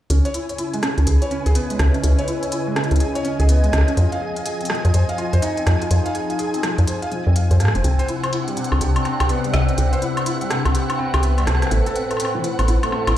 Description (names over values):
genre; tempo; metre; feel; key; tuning
IDM; 124 BPM; 4/4; swing 62% on 16ths; unclear; A4 = 444 Hz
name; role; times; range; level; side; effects
phased analog pad; sustained chords; 0.1-13.2 s; A2 to E5; -26 LUFS; left 2 dB; phaser, chorus, vintage 12-bit sampler grit
felt-muted upright piano; arpeggios; 0.1-13.1 s; A2 to F5; -25 LUFS; right 1 dB; low-pass filter, digital delay
woody FM bass; bass; 0.1-13.1 s; F1 to Ab2; -16 LUFS; equal; none
organic electronic drum kit; drums; 0.1-13.1 s; hi-hat, rim click, woodblock; -26 LUFS; left 1 dB; none
flickering grainy texture; texture; 0.4-13.2 s; F#5 to G#5; -32 LUFS; right 1 dB; built-in reverb
room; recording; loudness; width
light reverb, digital ambience; played on a big sound system in a bare room, large studio reverb; -17 LUFS; side -12 dB against mid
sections
0.1-13.2 A section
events
filter sweep on FM bass 0.1-13.2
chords
0.1 C#m7; 4.0 Fm7; 7.8 Cmaj7; 11.7 Amadd9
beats
| 0.10 0.58 1.07 1.55 | 2.04 2.52 3.00 3.49 | 3.97 4.46 4.94 5.42 | 5.91 6.39 6.88 7.36 | 7.84 8.33 8.81 9.29 | 9.78 10.26 10.75 11.23 | 11.71 12.20 12.68 13.17